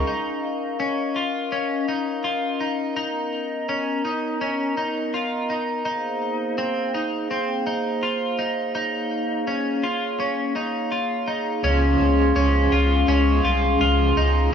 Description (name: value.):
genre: dream pop.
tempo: 83 BPM.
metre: 4/4.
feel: straight.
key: Db major.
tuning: A4 = 441 Hz.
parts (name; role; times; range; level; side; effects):
overdriven semi-hollow guitar; accompaniment; 0.0-0.1, 11.6-14.5 s; Db3 to C5; -27 LUFS; right 4 dB; tremolo, wide subtle chorus.
glass harmonica; sustained chords; 0.0-14.5 s; Bb3 to C6; -25 LUFS; left 1 dB; none.
twelve-string electric guitar; arpeggios; 0.0-14.5 s; C4 to F4; -25 LUFS; left 1 dB; lush chorus, digital delay.
round analog bass; bass; 0.0, 11.6-14.5 s; C2 to Db2; -21 LUFS; equal; none.
vibraphone with medium hard mallets; texture; 12.4-13.5 s; Db4; -30 LUFS; left 1 dB; none.
room: light reverb, small room ambience.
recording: none.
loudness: -20 LUFS.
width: side -7 dB against mid.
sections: 0.1-11.6 A section; 11.6-14.5 B section.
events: none.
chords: 0.1 Db69; 3.0 Cbmaj7; 5.9 Ab69; 8.7 Bbm7; 11.6 Dbmaj7.